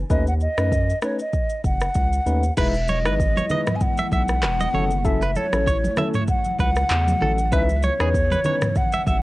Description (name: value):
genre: afrobeats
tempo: 97 BPM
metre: 4/4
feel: swing 55% on 16ths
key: E major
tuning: A4 = 440 Hz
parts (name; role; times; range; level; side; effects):
- saturated sub bass; bass; 0.0-9.2 s; E1 to F#2; -23 LUFS; equal; none
- mellow hollow silver concert flute; melody; 0.1-9.2 s; C#5 to G#5; -24 LUFS; equal; none
- tine electric piano; accompaniment; 0.1-8.6 s; E3 to B4; -27 LUFS; left 3 dB; auto-pan
- afro-pop drum kit; drums; 0.1-9.2 s; crash cymbal, handclaps, kick drum, rim click, shaker, toms; -24 LUFS; equal; vintage 12-bit sampler grit
- glassy FM pad; sustained chords; 3.0-9.2 s; C#3 to E4; -32 LUFS; left 1 dB; ensemble chorus, built-in reverb
- direct-recorded clean electric guitar; riff; 2.6-9.2 s; G#4 to E5; -29 LUFS; right 3 dB; none
- congas; percussion; 2.9-9.2 s; none; -29 LUFS; right 1 dB; none
room: little or no reverb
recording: worn, warbling old tape, cassette tape, warbly pitch drift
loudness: -19 LUFS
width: side -19 dB against mid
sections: 0.0-2.6 A section; 2.6-9.2 B section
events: none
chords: 0.1 B9/D#; 2.6 Emaj7; 4.7 F#m7; 7.5 C#m9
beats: | 0.10 0.72 1.34 1.96 | 2.57 3.19 3.81 4.43 | 5.05 5.67 6.29 6.90 | 7.52 8.14 8.76